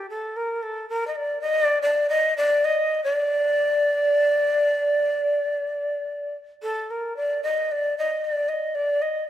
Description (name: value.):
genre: japanese traditional, Japanese chamber music.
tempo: 75 BPM.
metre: 4/4.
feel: rubato.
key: unclear.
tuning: A4 = 439 Hz.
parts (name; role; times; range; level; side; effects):
breathy shakuhachi; solo; 0.0-9.3 s; A4 to Eb5; -21 LUFS; equal; none.
room: wet scoring stage reverb, RT60 1.9 s.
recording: none.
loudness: -21 LUFS.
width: side -11 dB against mid.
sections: 0.0-9.3 A section.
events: none.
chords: none.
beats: 0.17 0.99 | 1.80 2.61 3.42 4.22 | 5.02 5.82 6.62 7.42 | 8.21 9.01.